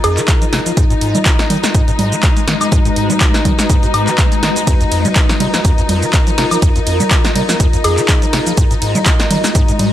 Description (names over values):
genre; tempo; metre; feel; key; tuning
acid house; 123 BPM; 4/4; swing 55% on 16ths; F minor pentatonic; A4 = 440 Hz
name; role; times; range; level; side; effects
hollow square pluck; melody; 0.0-0.7, 7.8-8.5 s; Ab4; -23 LUFS; equal; analog chorus, analog delay
dark chamber string section; sustained chords; 0.0-9.9 s; Eb4; -21 LUFS; left 4 dB; sidechain pumping
liquid acid bass; riff; 0.0-9.9 s; F2 to Ab3; -19 LUFS; equal; tube saturation, analog chorus
punchy analog drum machine; drums; 0.0-9.9 s; congas, handclaps, hi-hat, ride cymbal, shaker, snare drum, woodblock; -17 LUFS; right 1 dB; none
granular cloud pad; texture; 0.0-9.9 s; Ab3 to Eb5; -21 LUFS; equal; built-in reverb, sidechain pumping
electronic kick drum; drums; 0.3-9.7 s; none; -14 LUFS; equal; none
room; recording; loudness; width
light reverb, digital ambience; none; -11 LUFS; side -12 dB against mid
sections
0.0-9.9 A section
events
none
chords
0.0 Fm7; 0.8 Abm7; 4.7 F7(no3); 8.6 Abm7